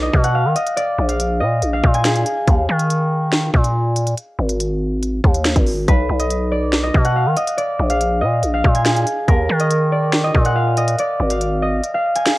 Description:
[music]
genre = hip hop, drill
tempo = 141 BPM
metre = 4/4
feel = half-time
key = unclear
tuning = A4 = 440 Hz
[part]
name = concert harp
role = melody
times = 0.0-12.4 s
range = Ab4 to Ab5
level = -20 LUFS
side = equal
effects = low-pass filter, ping-pong delay
[part]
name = growling 808-style bass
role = bass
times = 0.0-11.8 s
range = Ab1 to D#3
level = -18 LUFS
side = equal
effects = none
[part]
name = drill drum kit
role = drums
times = 0.1-12.4 s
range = finger snaps, hi-hat, kick drum, snare drum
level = -17 LUFS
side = equal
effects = none
[sound]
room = digital ambience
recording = worn, warbling old tape, cassette tape, warbly pitch drift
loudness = -15 LUFS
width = side -18 dB against mid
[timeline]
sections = 0.0-12.4 A section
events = kick muted 11.8-12.4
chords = 0.0 B; 0.8 Bb7; 2.5 Eb5; 4.2 Ab5; 5.9 B; 7.6 Bb7; 9.3 Eb5; 11.0 Ab5

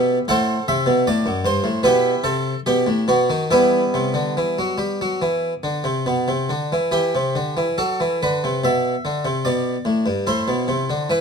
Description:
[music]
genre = classical, baroque-style suite movement for harpsichord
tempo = 68-76 BPM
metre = 4/4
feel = rubato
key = E minor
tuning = A4 = 444 Hz
[part]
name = harpsichord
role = solo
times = 0.0-11.2 s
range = F#2 to F#5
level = -18 LUFS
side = equal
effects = none
[sound]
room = light reverb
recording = dark, warm production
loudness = -18 LUFS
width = side -6 dB against mid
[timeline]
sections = 0.0-6.9 A section; 6.9-11.2 B section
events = none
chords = 0.3 F#dim/A; 1.9 Em/B; 2.7 B7; 3.5 Em; 8.6 G/B; 10.3 Am

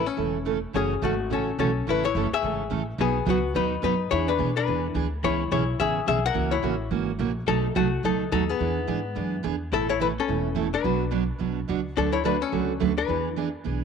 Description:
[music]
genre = country, western swing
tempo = 214 BPM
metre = 4/4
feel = swing 59% on 8ths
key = A major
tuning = A4 = 440 Hz
[part]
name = archtop guitar, miked and amplified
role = melody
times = 0.0-13.5 s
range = A3 to F#5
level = -26 LUFS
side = left 9 dB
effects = none
[part]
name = upright bass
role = bass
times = 0.0-13.8 s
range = E1 to B2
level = -30 LUFS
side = equal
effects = none
[part]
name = picked steel-string acoustic guitar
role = accompaniment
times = 0.2-13.8 s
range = B2 to B4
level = -27 LUFS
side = right 12 dB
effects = none
[sound]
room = moderate spring reverb, RT60 2.0 s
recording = 1960s-style stereo with parts hard left and right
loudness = -23 LUFS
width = side -6 dB against mid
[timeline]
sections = 0.7-9.7 A section; 9.7-13.8 B section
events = none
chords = 0.0 A; 0.7 F#m7; 1.9 A; 3.0 B; 4.1 E7; 5.2 C#m7; 6.4 F#7; 7.5 B7; 8.6 E7; 9.7 Asus2; 10.8 Bm; 12.0 D6; 13.1 E7

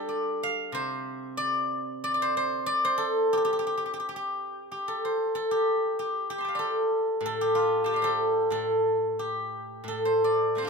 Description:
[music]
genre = chinese traditional, Chinese solo plucked strings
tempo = 88-98 BPM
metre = 2/4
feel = rubato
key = G shang mode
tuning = A4 = 442 Hz
[part]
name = steel-string zither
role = solo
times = 0.0-10.7 s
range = A2 to C6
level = -25 LUFS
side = equal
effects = none
[sound]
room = light reverb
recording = minimal, uncompressed stereo recording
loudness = -25 LUFS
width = side -4 dB against mid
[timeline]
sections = 0.0-4.6 A section; 4.6-10.7 B section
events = none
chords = none

